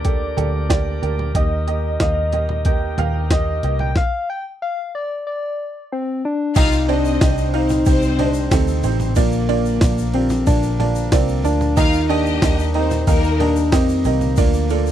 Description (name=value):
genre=piano-driven pop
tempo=92 BPM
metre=4/4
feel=straight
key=unclear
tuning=A4 = 440 Hz
part: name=soft struck synth lead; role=melody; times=0.0-14.9 s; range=Bb3 to G5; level=-22 LUFS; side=left 3 dB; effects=chorus, slapback echo
part: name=clear upright piano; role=accompaniment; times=0.0-14.9 s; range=Bb2 to F5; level=-23 LUFS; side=right 16 dB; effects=none
part: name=bright tonewheel organ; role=sustained chords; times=0.0-14.9 s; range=C3 to D5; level=-33 LUFS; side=left 4 dB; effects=lush chorus
part: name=vintage muted picked electric bass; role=bass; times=0.0-14.9 s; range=A1 to F2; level=-21 LUFS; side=equal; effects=none
part: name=jungle sampler-style drum kit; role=drums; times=0.0-14.9 s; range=crash cymbal, hi-hat, kick drum, ride cymbal, snare drum, toms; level=-20 LUFS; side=equal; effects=none
part: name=warm studio violin section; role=second line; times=6.6-13.7 s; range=Bb3 to F5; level=-25 LUFS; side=left 6 dB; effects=none
part: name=tube shaker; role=percussion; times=6.6-14.9 s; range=none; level=-38 LUFS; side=left 17 dB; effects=none
room=little or no reverb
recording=dry, close 1970s-style studio recording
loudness=-16 LUFS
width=side -11 dB against mid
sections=0.0-6.6 A section; 6.6-14.9 B section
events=stop 4.0-6.6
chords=0.0 Gm/D; 1.4 Eb; 4.0 N.C.; 6.6 Cm; 9.2 Bb; 11.8 Eb; 14.4 Bb/D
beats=0.05 0.70 | 1.35 2.00 2.65 3.31 | 3.96 4.61 5.26 5.91 | 6.56 7.21 7.87 8.52 | 9.17 9.82 10.47 11.12 | 11.77 12.42 13.07 13.73 | 14.38